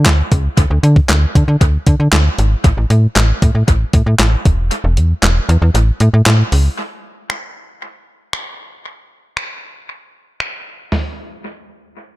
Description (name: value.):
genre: dance-pop.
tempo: 116 BPM.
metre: 4/4.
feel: straight.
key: unclear.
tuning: A4 = 440 Hz.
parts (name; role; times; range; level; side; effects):
slap-like FM bass; bass; 0.0-6.7 s; E1 to D3; -12 LUFS; equal; sidechain pumping.
crisp 8-bit digital drum machine; drums; 0.1-11.0 s; finger snaps, handclaps, hi-hat, kick drum, snare drum, toms; -15 LUFS; equal; dub echo.
room: digital ambience.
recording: echo-heavy mix, low-pass filter.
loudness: -11 LUFS.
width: side -18 dB against mid.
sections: 0.0-6.8 A section; 6.8-10.9 B section; 10.9-12.2 C section.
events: drop 0.0-6.8; kick muted 4.7-6.8.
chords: none.